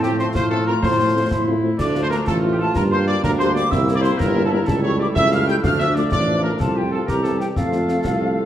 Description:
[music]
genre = military-style march for wind band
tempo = 125 BPM (dotted quarters)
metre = 6/8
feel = straight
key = F major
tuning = A4 = 440 Hz
[part]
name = dark trumpet section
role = melody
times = 0.0-8.5 s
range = F4 to G5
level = -25 LUFS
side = equal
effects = none
[part]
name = mellow woodwind section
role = second line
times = 0.0-8.5 s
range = C4 to A4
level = -26 LUFS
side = left 2 dB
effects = none
[part]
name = small flute group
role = second line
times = 0.0-8.5 s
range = F5 to G6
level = -25 LUFS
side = left 1 dB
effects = none
[part]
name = mellow French horn section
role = accompaniment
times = 0.0-8.4 s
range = E3 to G4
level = -28 LUFS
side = left 4 dB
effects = none
[part]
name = bright trombone section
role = sustained chords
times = 0.0-8.5 s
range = E3 to Bb3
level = -28 LUFS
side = right 3 dB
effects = none
[part]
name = warm tuba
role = bass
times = 0.0-8.4 s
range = G1 to A2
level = -21 LUFS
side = right 2 dB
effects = none
[part]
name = concert snare drum, concert bass drum and clash cymbals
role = drums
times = 0.0-8.2 s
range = none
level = -26 LUFS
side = left 1 dB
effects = none
[sound]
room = wet recital hall reverb, RT60 1.4 s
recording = dark, warm production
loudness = -17 LUFS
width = side -11 dB against mid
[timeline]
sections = 0.0-8.5 A section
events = none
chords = 0.0 F/A; 1.8 Dm; 2.8 Gm; 3.7 C7; 4.7 A7/C#; 5.6 Dm; 6.6 F/C; 7.1 C; 7.6 F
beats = 0.34 | 0.82 1.31 | 1.79 2.27 | 2.75 3.23 | 3.71 4.19 | 4.67 5.16 | 5.64 6.12 | 6.60 7.08 | 7.56 8.04

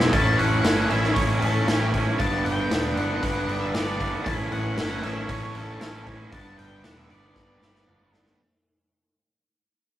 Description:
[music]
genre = classic rock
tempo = 116 BPM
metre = 4/4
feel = straight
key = A mixolydian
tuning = A4 = 440 Hz
[part]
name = crunchy overdriven guitar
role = riff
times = 0.0-8.4 s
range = E2 to E4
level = -32 LUFS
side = left 4 dB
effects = none
[part]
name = tight distorted guitar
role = riff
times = 0.0-8.4 s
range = G2 to E4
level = -27 LUFS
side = right 2 dB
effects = distortion
[part]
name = modern bright picked electric bass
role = bass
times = 0.0-8.3 s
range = E1 to A1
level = -29 LUFS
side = equal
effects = none
[part]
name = raw garage drum kit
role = drums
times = 0.0-8.4 s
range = hi-hat, kick drum, snare drum, toms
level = -27 LUFS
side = equal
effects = none
[part]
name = octave-fuzz lead guitar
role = melody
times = 0.1-8.1 s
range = A4 to A5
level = -31 LUFS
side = left 3 dB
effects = distortion
[sound]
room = wet studio reverb, RT60 0.5 s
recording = rough rehearsal-room recording, tube saturation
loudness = -21 LUFS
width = side -13 dB against mid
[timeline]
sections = 0.1-8.4 A section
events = fade-out 0.1-8.4; drum fill 7.4-8.4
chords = 0.1 A; 2.2 G; 4.3 A; 6.3 G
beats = | 0.13 0.64 1.16 1.68 | 2.19 2.71 3.23 3.74 | 4.26 4.78 5.29 5.81 | 6.33 6.84 7.36 7.88

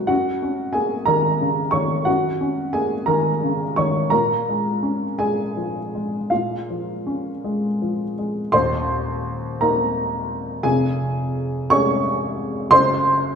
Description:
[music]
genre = neoclassical minimalist piano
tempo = 52-61 BPM (dotted quarters)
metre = 6/8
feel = rubato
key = Eb dorian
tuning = A4 = 440 Hz
[part]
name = dark upright piano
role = solo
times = 0.0-13.4 s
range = Eb1 to Db6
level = -19 LUFS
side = equal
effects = none
[sound]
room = wet recital hall reverb, RT60 1.6 s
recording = recorded in a church or concert hall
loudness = -19 LUFS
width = side -6 dB against mid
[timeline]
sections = 0.0-8.5 A section; 8.5-13.4 B section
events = none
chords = 0.1 Ebm7/Gb; 4.1 Bbm7; 8.5 Eb5; 10.6 Db/F; 12.7 N.C.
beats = | 0.10 1.09 | 2.07 3.07 | 4.11 5.18 | 6.30 7.43 | 8.54 9.60 | 10.63 11.71 | 12.73

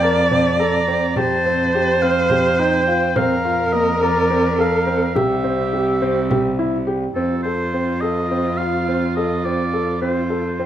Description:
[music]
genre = contemporary instrumental, chamber music in an uneven meter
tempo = 210 BPM (eighths)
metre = 7/8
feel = straight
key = F major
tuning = A4 = 439 Hz
[part]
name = clear oboe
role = melody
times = 0.0-10.7 s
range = A4 to Bb5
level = -23 LUFS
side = equal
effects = none
[part]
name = dark viola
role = second line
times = 0.0-10.7 s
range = F4 to D5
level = -21 LUFS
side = equal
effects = none
[part]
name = warm baby grand piano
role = arpeggios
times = 0.0-10.7 s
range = Bb3 to Bb4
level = -22 LUFS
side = left 1 dB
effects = none
[part]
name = bright cello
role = bass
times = 0.0-10.7 s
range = C2 to F2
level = -23 LUFS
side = right 2 dB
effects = none
[part]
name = frame drum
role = percussion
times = 0.3-6.6 s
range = none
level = -27 LUFS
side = right 1 dB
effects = none
[sound]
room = moderate recital hall reverb, RT60 1.6 s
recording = minimal, uncompressed stereo recording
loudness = -16 LUFS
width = side -10 dB against mid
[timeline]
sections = 0.0-7.2 A section; 7.2-10.7 B section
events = none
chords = 0.0 Bbmaj9/F; 1.2 Fadd9; 3.2 Bbadd9/F; 5.2 C; 7.2 F7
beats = 0.03 0.31 0.60 0.88 | 1.17 1.45 1.74 2.02 2.31 2.60 2.88 | 3.17 3.45 3.74 4.02 4.31 4.59 4.88 | 5.16 5.45 5.73 6.02 6.30 6.59 6.88 | 7.16 7.45 7.73 8.02 8.30 8.59 8.88 | 9.16 9.45 9.73 10.02 10.30 10.59

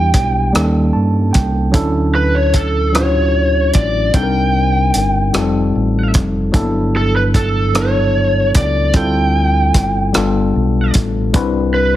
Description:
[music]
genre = slow six-eight R&B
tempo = 50 BPM (dotted quarters)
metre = 6/8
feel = straight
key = unclear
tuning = A4 = 440 Hz
[part]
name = lead guitar through a small cranked amp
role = melody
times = 0.0-11.9 s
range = A4 to G5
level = -18 LUFS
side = right 1 dB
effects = overdrive, slapback echo, plate reverb
[part]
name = tine electric piano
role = accompaniment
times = 0.0-12.0 s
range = F#3 to A5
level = -17 LUFS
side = moving between left 6 dB and right 2 dB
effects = auto-pan, plate reverb
[part]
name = deep dub fingered electric bass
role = bass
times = 0.0-12.0 s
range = F1 to G2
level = -17 LUFS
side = equal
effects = none
[part]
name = warm soul drum kit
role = drums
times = 0.1-11.5 s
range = hi-hat, kick drum, rim click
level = -16 LUFS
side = equal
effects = none
[sound]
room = light reverb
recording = heavily compressed radio sound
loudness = -12 LUFS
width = side -13 dB against mid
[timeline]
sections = 0.0-12.0 A section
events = tine electric piano fill 0.5-1.7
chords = 0.0 Em7; 0.5 D#7#11; 1.7 Dmaj7; 4.1 Cm7; 5.3 F9; 6.5 Gmaj13; 8.9 Dm11; 10.1 G9; 11.3 Cmaj9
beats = 0.54 | 1.74 2.94 | 4.14 5.34 | 6.54 7.74 | 8.94 10.14 | 11.34

